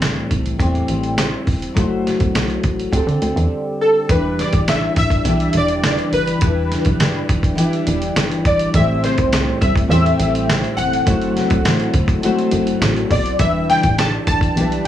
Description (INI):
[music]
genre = indie pop, bedroom pop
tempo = 103 BPM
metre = 4/4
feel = straight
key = E minor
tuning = A4 = 441 Hz
[part]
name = fingerpicked steel-string acoustic guitar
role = accompaniment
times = 0.0-14.9 s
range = A2 to C5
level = -20 LUFS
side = left 2 dB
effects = analog chorus, vibrato effect
[part]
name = plucky analog bass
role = bass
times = 0.0-14.8 s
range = E1 to D3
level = -21 LUFS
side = right 1 dB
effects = none
[part]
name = lo-fi sampler-style drum kit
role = drums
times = 0.0-14.8 s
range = hi-hat, kick drum, snare drum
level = -20 LUFS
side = right 1 dB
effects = none
[part]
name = warm analog keys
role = melody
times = 3.8-14.9 s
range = A4 to A5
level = -20 LUFS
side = left 1 dB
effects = ensemble chorus, slapback echo
[part]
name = string machine, cellos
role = sustained chords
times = 4.1-14.9 s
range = E3 to A4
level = -27 LUFS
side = right 1 dB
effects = ensemble chorus
[sound]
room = light reverb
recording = small room ambience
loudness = -15 LUFS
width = side -11 dB against mid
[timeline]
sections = 0.0-4.1 A section; 4.1-14.9 B section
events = none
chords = 0.0 Am7; 1.8 F#m7b5; 2.9 D7sus4; 4.1 Em7; 8.7 Am7; 11.1 F#m7b5; 13.4 Em7